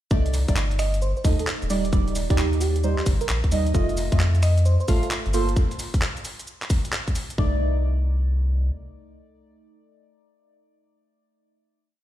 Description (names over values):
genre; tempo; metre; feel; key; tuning
UK garage, two-step garage; 132 BPM; 4/4; swing 65% on 16ths; C dorian; A4 = 440 Hz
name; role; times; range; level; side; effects
deep mellow chord stab; stabs; 0.1-11.8 s; G3 to F5; -28 LUFS; right 2 dB; chorus, phaser, dub echo
soft dub sub bass; bass; 0.1-8.7 s; Eb1 to F2; -22 LUFS; equal; none
breakbeat sampler-style drum kit; drums; 0.1-7.4 s; cabasa, finger snaps, handclaps, hi-hat; -30 LUFS; equal; small room reverb
electronic kick drum; drums; 0.1-7.5 s; none; -22 LUFS; equal; small room reverb
bell-like FM electric piano; melody; 0.8-5.1 s; G4 to Eb5; -32 LUFS; right 2 dB; chorus, tremolo, vintage 12-bit sampler grit, dub echo
room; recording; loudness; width
little or no reverb; played on a big sound system in a bare room, stone room reverb; -20 LUFS; side -13 dB against mid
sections
0.1-7.4 drop; 7.4-11.0 final chord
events
drop 0.1-7.4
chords
0.1 Cm69; 1.7 Ebmaj7; 3.7 F7; 5.3 Gm11; 7.4 Cm69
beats
| 0.11 0.56 1.02 1.47 | 1.93 2.38 2.84 3.29 | 3.75 4.20 4.66 5.11 | 5.56 6.02 6.47 6.93 | 7.38 7.84 8.29 8.75 | 9.20 9.65 10.11 10.56